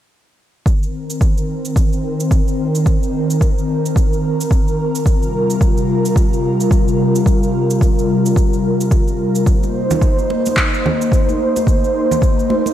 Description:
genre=organic downtempo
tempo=109 BPM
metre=4/4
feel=swing 59% on 16ths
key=C minor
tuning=A4 = 439 Hz
part: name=airy breathy pad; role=sustained chords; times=0.7-12.7 s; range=C3 to C5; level=-17 LUFS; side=equal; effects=chorus, sidechain pumping
part: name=electronic kick drum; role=drums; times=0.7-12.3 s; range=none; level=-15 LUFS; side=equal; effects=none
part: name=electronic shaker and handclaps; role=drums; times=0.7-12.7 s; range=none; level=-25 LUFS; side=right 1 dB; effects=none
part: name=congas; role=percussion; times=9.6-12.7 s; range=none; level=-23 LUFS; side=right 3 dB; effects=none
room=moderate lush hall reverb, RT60 1.8 s, digital ambience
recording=big arena sound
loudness=-14 LUFS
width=side -11 dB against mid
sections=0.7-12.7 A section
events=filter sweep on analog synth pad 0.7-12.7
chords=0.7 Cm7; 5.1 Gm7/C; 9.5 Cm7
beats=| 0.66 1.21 1.76 2.31 | 2.86 3.42 3.96 4.52 | 5.07 5.62 6.17 6.72 | 7.27 7.82 8.37 8.92 | 9.47 10.02 10.57 11.12 | 11.67 12.22

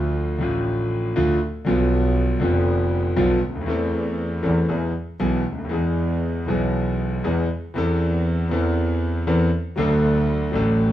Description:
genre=tango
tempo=119 BPM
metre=4/4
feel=rubato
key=A harmonic minor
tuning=A4 = 445 Hz
part: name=clear concert grand piano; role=accompaniment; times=0.0-10.9 s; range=F1 to A4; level=-20 LUFS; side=equal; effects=none
part: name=clear double bass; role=bass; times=0.0-10.9 s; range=F1 to E2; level=-25 LUFS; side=right 1 dB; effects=none
room=wet studio reverb, RT60 0.8 s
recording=band playing live in one room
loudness=-19 LUFS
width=side -12 dB against mid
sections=0.0-10.9 A section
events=none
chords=0.0 Dm; 1.7 Bdim; 3.7 Am/E; 4.7 E; 7.8 Amadd9/E; 9.8 D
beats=0.15 0.66 1.16 | 1.66 2.16 2.67 3.17 | 3.68 4.18 4.69 5.20 | 5.72 6.23 6.74 7.25 | 7.76 8.26 8.76 9.27 | 9.77 10.27 10.78

